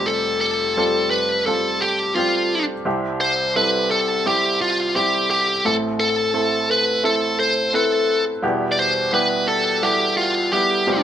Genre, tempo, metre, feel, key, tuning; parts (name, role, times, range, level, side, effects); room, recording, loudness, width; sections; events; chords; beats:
piano-driven pop; 86 BPM; 4/4; straight; A4 = 440 Hz
bluesy overdriven lead guitar; melody; 0.0-11.0 s; F4 to D5; -18 LUFS; left 1 dB; distortion
clear upright piano; accompaniment; 0.0-11.0 s; F1 to B4; -22 LUFS; right 1 dB
moderate studio reverb, RT60 0.7 s; band playing live in one room; -17 LUFS; side -10 dB against mid
0.0-11.0 A section
0.0 Fsus2; 2.9 C; 5.6 Am; 8.4 Em
| 0.07 0.77 1.46 2.16 | 2.86 3.55 4.25 4.95 | 5.64 6.34 7.04 7.73 | 8.43 9.13 9.82 10.52